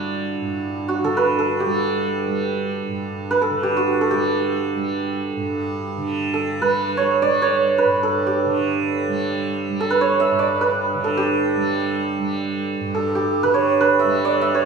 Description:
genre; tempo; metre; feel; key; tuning
indian classical, Hindustani; free time; none; none; G raga yaman; A4 = 442 Hz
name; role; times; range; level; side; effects
santur; melody; 0.0-14.7 s; D4 to E5; -19 LUFS; right 2 dB; none
tanpura; drone; 0.0-14.7 s; G2 to G3; -24 LUFS; right 3 dB; none
room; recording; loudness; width
wet recital hall reverb, RT60 1.5 s; recorded in a church or concert hall, studio ambience; -18 LUFS; side -5 dB against mid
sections
0.0-14.7 A section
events
none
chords
none

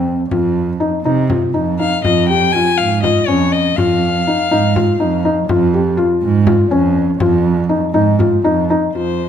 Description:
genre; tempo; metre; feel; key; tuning
contemporary instrumental, chamber music in an uneven meter; 243 BPM (eighths); 7/8; straight; unclear; A4 = 440 Hz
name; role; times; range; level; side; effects
felt-muted upright piano; arpeggios; 0.0-9.3 s; C4 to G4; -16 LUFS; left 3 dB; none
dark cello; bass; 0.0-9.3 s; F2 to C3; -17 LUFS; right 5 dB; none
frame drum; percussion; 0.1-8.6 s; none; -23 LUFS; left 4 dB; none
rich violin; melody; 1.8-5.2, 9.0-9.3 s; C5 to Ab5; -17 LUFS; left 5 dB; none
room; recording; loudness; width
light reverb; none; -12 LUFS; side -9 dB against mid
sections
0.0-9.0 A section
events
none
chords
0.0 F7(no3); 2.0 Dbadd9/F (rootless)

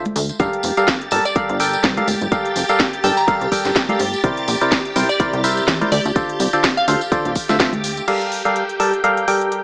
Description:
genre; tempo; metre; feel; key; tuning
piano house; 125 BPM; 4/4; swing 56% on 16ths; G dorian; A4 = 440 Hz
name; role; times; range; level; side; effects
percussive organ stab; riff; 0.0-9.6 s; C3 to A5; -19 LUFS; equal; chorus, sidechain pumping
house drum kit; drums; 0.1-9.6 s; crash cymbal, hi-hat, snare drum; -22 LUFS; equal; none
congas and tambourine; percussion; 0.1-8.1 s; none; -26 LUFS; equal; none
plucky analog bass; bass; 0.2-8.0 s; D1 to E2; -22 LUFS; equal; sidechain pumping
string machine, violins; sustained chords; 0.4-9.6 s; G4 to A6; -24 LUFS; equal; ensemble chorus, sidechain pumping
electronic kick drum; drums; 0.4-7.7 s; none; -21 LUFS; equal; none
glassy wavetable pluck; melody; 1.3-7.1 s; D5 to Bb5; -23 LUFS; equal; chorus, analog delay
room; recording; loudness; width
moderate plate reverb, RT60 1.3 s, digital ambience; dry, gritty hardware recording, small speaker sound; -15 LUFS; side -30 dB against mid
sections
0.0-8.1 A section; 8.1-9.6 B section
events
none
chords
0.4 Gm9; 4.2 C9; 5.9 Dm7; 8.1 Gm9

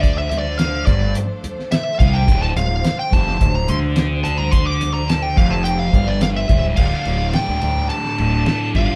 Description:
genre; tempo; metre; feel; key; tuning
psychedelic rock; 107 BPM; 4/4; straight; D minor; A4 = 440 Hz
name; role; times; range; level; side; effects
fuzz lead guitar; melody; 0.0-9.0 s; D5 to D6; -25 LUFS; equal; distortion
bright studio string section; sustained chords; 0.0-9.0 s; F3 to D5; -34 LUFS; equal; none
thick fuzz guitar; riff; 0.0-9.0 s; D2 to F4; -25 LUFS; equal; distortion, phaser
fuzz fingered electric bass; bass; 0.0-8.9 s; D1 to D2; -24 LUFS; equal; overdrive
cloth-damped thuddy drum kit; drums; 0.0-8.9 s; crash cymbal, hi-hat, kick drum, ride cymbal, snare drum; -21 LUFS; equal; none
congas; percussion; 0.3-8.9 s; none; -34 LUFS; equal; none
room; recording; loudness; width
wet small room reverb, RT60 0.6 s; band playing live in one room; -18 LUFS; mono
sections
0.0-6.8 A section; 6.8-9.0 B section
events
lead electric guitar solo 0.0-6.8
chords
0.0 Dm

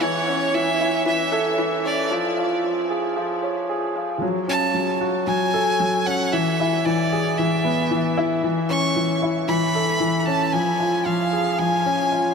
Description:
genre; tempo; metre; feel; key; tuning
electronica; 114 BPM; 4/4; straight; unclear; A4 = 440 Hz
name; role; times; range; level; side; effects
clear violin; melody; 0.0-12.3 s; C#5 to C#6; -23 LUFS; right 1 dB; shimmer reverb
warm concert grand piano; riff; 0.0-12.3 s; E3 to C#5; -21 LUFS; left 1 dB; shimmer reverb
room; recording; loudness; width
wet huge ambient reverb, RT60 7.5 s; high-pass filter; -19 LUFS; side -5 dB against mid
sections
0.0-4.2 A section; 4.2-12.3 B section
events
build-up 0.0-4.2; filter sweep 0.0-4.2; break 2.1-4.2; drop 4.2-12.3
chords
0.0 A; 2.1 C#; 4.2 F#m; 6.3 E; 8.4 A; 10.5 C#

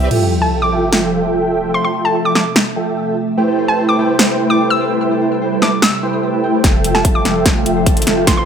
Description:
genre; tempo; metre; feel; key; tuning
future bass; 147 BPM; 4/4; half-time; unclear; A4 = 440 Hz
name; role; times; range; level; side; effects
ethereal airy pad; sustained chords; 0.0-8.5 s; C3 to E5; -23 LUFS; right 4 dB; ensemble chorus, built-in reverb, phaser, sidechain pumping
concert harp; arpeggios; 0.0-8.5 s; G4 to C6; -28 LUFS; equal; sidechain pumping, digital delay
big bright polysynth; riff; 0.0-8.5 s; F3 to A5; -16 LUFS; equal; ensemble chorus, sidechain pumping
long sustained 808-style bass; bass; 0.0-0.1, 6.6-8.5 s; F1; -23 LUFS; equal; tube saturation, sidechain pumping
big-room dance drum kit; drums; 0.1-8.4 s; crash cymbal, hi-hat, snare drum; -16 LUFS; equal; studio reverb
sub drop and riser; sound effects; 0.1-1.7, 7.9-8.5 s; none; -23 LUFS; equal; none
hollow square pluck; melody; 0.4-8.4 s; A5 to E6; -19 LUFS; equal; chorus, sidechain pumping, digital delay
electronic kick drum; drums; 6.6-8.4 s; none; -14 LUFS; equal; studio reverb
room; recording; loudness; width
moderate digital room reverb, RT60 1.3 s, digital ambience; none; -12 LUFS; side -8 dB against mid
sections
0.1-6.6 A section; 6.6-8.5 B section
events
impact 0.1-1.7; build-up 6.6-8.5; drum fill 6.6-8.5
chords
0.1 Fmaj7; 3.2 Am7; 6.6 Fmaj7

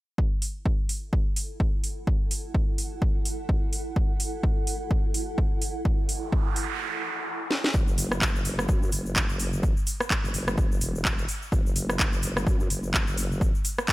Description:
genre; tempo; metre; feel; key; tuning
bass house; 127 BPM; 4/4; swing 58% on 16ths; F# minor; A4 = 440 Hz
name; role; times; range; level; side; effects
electronic kick drum; drums; 0.2-13.9 s; none; -25 LUFS; equal; none
granular cloud pad; texture; 1.5-6.8 s; E4 to F#5; -37 LUFS; right 2 dB; built-in reverb, sidechain pumping
house drum kit; drums; 0.4-13.9 s; handclaps, hi-hat, rim click, snare drum; -28 LUFS; equal; none
noise sweep; sound effects; 6.1-7.7 s; none; -32 LUFS; right 4 dB; none
vowel-sweep wobble bass; bass; 7.7-13.5 s; E1 to F#2; -30 LUFS; equal; chorus, overdrive, sidechain pumping
egg shaker; percussion; 7.7-13.9 s; none; -39 LUFS; left 4 dB; none
room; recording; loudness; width
little or no reverb; none; -24 LUFS; side -18 dB against mid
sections
0.2-7.7 A section; 7.7-13.9 B section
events
fade-in on ambient pad 0.2-7.7; noise sweep 6.1-7.7; stop 6.8-7.7; drum fill 7.5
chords
0.2 F#m7; 7.7 N.C.

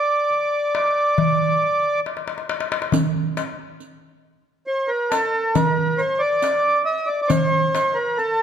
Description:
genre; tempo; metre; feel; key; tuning
Arabic maqam ensemble; 137 BPM (eighths); 10/8; straight; D maqam huzam; A4 = 440 Hz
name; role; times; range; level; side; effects
mellow accordion; melody; 0.0-8.4 s; A4+40c to E5-50c; -19 LUFS; right 1 dB; none
darbuka; percussion; 0.3-7.9 s; none; -23 LUFS; left 1 dB; none
riq; percussion; 2.9-8.3 s; none; -28 LUFS; right 6 dB; none
room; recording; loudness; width
wet concert hall reverb, RT60 1.7 s; dark, warm production; -18 LUFS; side -8 dB against mid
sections
0.0-2.9 A section; 2.9-8.4 B section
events
drum fill 2.1-2.9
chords
none

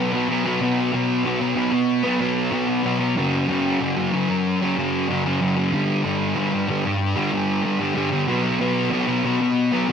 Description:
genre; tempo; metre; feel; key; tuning
rock; 94 BPM; 4/4; straight; B minor; A4 = 440 Hz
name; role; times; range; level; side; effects
thick fuzz guitar; solo; 0.0-9.9 s; F#2 to B3; -19 LUFS; equal; distortion, analog chorus, slapback echo
room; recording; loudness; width
moderate huge ambient reverb, RT60 7.3 s; none; -19 LUFS; side -7 dB against mid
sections
0.0-9.9 A section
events
none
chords
0.0 B5; 3.2 F#5; 5.7 G5; 8.3 B5

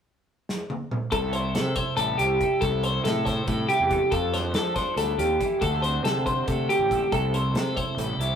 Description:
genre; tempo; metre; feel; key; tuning
math rock and midwest emo; 280 BPM (eighths); 7/8; straight; C major; A4 = 442 Hz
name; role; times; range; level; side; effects
loose indie drum kit; drums; 0.5-8.3 s; hi-hat, kick drum, snare drum, toms; -32 LUFS; equal; none
twelve-string electric guitar; accompaniment; 1.1-8.4 s; C3 to C5; -31 LUFS; right 4 dB; phaser
twelve-string electric guitar; arpeggios; 1.1-8.4 s; G4 to C5; -24 LUFS; left 1 dB; none
fuzz fingered electric bass; bass; 1.1-8.4 s; A1 to F3; -29 LUFS; equal; overdrive
room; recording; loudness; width
moderate stone room reverb, RT60 1.4 s; rough rehearsal-room recording; -22 LUFS; side -8 dB against mid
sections
0.0-1.1 A section; 1.1-8.4 B section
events
drum fill 0.5-1.1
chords
0.0 N.C.; 1.1 C6; 4.1 F6; 5.6 D5; 7.1 C6

